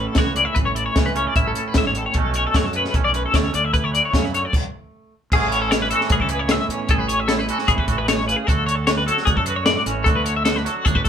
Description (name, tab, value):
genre	math rock and midwest emo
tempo	152 BPM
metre	4/4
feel	straight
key	A major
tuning	A4 = 440 Hz
part	twangy electric guitar	accompaniment	0.0-11.1 s	F#2 to A4	-26 LUFS	right 7 dB	none
part	twelve-string electric guitar	arpeggios	0.0-11.1 s	F#4 to E5	-21 LUFS	left 4 dB	tremolo
part	fuzz fingered electric bass	bass	0.0-11.1 s	A1 to F#2	-26 LUFS	right 1 dB	overdrive
part	compact cocktail drum kit	drums	0.1-11.1 s	crash cymbal, hi-hat, kick drum, snare drum	-21 LUFS	equal	none
room	moderate small room reverb, RT60 0.6 s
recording	band playing live in one room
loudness	-17 LUFS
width	side -8 dB against mid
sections	0.0-5.3 A section; 5.3-11.1 B section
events	stop 4.5-5.3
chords	0.0 Aadd9; 2.2 Bm9; 3.5 Dmaj9; 4.5 N.C.; 5.3 Amaj7; 8.5 Dmaj7